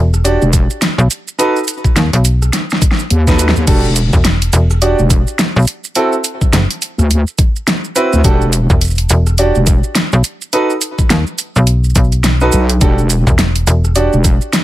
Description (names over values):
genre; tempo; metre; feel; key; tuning
glitch hop; 105 BPM; 4/4; swing 60% on 16ths; E minor; A4 = 442 Hz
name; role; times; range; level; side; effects
slap-like FM bass; bass; 0.0-14.1 s; E1 to D#2; -11 LUFS; equal; none
pop drum kit; drums; 0.1-14.6 s; crash cymbal, hi-hat, rim click, shaker, snare drum; -16 LUFS; equal; overdrive
clear baby grand piano; stabs; 0.2-14.1 s; C4 to D5; -16 LUFS; right 2 dB; sidechain pumping, digital delay
wobble bass; bass; 0.4-14.4 s; E1 to D#2; -12 LUFS; equal; chorus, overdrive
electronic kick drum; drums; 0.5-14.4 s; none; -12 LUFS; equal; overdrive
room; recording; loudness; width
little or no reverb; none; -10 LUFS; side -15 dB against mid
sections
0.0-14.6 A section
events
drum fill 2.5-3.7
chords
0.0 Em9; 1.4 B7; 3.7 Em9; 6.0 D13; 8.2 Em9; 10.5 B7; 12.8 Em9